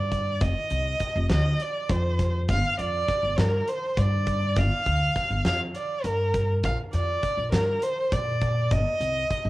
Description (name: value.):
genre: progressive instrumental, band music in an uneven meter.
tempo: 202 BPM (eighths).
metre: 7/8.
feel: straight.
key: G minor.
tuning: A4 = 440 Hz.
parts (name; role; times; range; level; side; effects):
rich violin; melody; 0.0-9.5 s; Bb4 to F5; -26 LUFS; right 1 dB; cassette tape.
upright bass; bass; 0.0-9.5 s; F1 to Bb2; -25 LUFS; equal; none.
huge arena drum kit; drums; 0.1-9.4 s; hi-hat, kick drum, snare drum; -31 LUFS; equal; cassette tape.
room: light reverb.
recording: home recording on cassette.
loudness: -23 LUFS.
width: side -18 dB against mid.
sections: 0.0-9.5 A section.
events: none.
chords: 0.4 F5; 2.5 G5; 6.6 Bb; 8.7 Cm/G.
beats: 0.12 | 0.41 0.71 1.01 1.30 1.60 1.90 2.19 | 2.49 2.79 3.08 3.38 3.68 3.97 4.27 | 4.57 4.86 5.16 5.46 5.75 6.05 6.34 | 6.64 6.94 7.23 7.53 7.83 8.12 8.42 | 8.71 9.01 9.31.